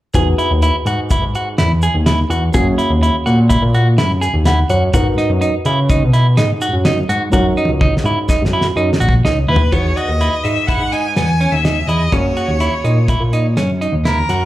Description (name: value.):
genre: progressive instrumental, band music in an uneven meter.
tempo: 125 BPM.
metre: 5/4.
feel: straight.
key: E lydian.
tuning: A4 = 439 Hz.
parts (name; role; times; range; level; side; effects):
dark baby grand piano; accompaniment; 0.1-14.5 s; D#3 to F#5; -23 LUFS; left 1 dB; slapback echo.
clean electric guitar; arpeggios; 0.1-14.4 s; B3 to G#4; -19 LUFS; right 2 dB; slapback echo.
fat analog bass; bass; 0.1-14.5 s; A#1 to C#3; -15 LUFS; equal; none.
damped 70s drum kit; drums; 0.1-14.4 s; hi-hat, kick drum, snare drum, toms; -18 LUFS; equal; none.
tube shaker; percussion; 0.1-9.2 s; none; -36 LUFS; left 1 dB; none.
clear violin; melody; 9.5-14.5 s; A#4 to G#5; -20 LUFS; left 1 dB; slapback echo, ping-pong delay.
room: light reverb.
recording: live gig heard through the venue's PA, club ambience.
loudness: -12 LUFS.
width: side -15 dB against mid.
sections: 0.1-9.7 A section; 9.7-14.5 B section.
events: grand piano fill 4.2-4.9; drum fill 7.3-9.7.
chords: 0.1 Emaj7; 2.5 F#add9; 4.9 G#m7; 7.3 D#m7; 9.7 Emaj7; 12.1 F#add9.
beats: | 0.14 0.62 1.10 1.58 2.06 | 2.54 3.02 3.50 3.98 4.46 | 4.93 5.41 5.89 6.37 6.85 | 7.33 7.81 8.29 8.77 9.25 | 9.73 10.21 10.69 11.16 11.64 | 12.12 12.61 13.09 13.56 14.04.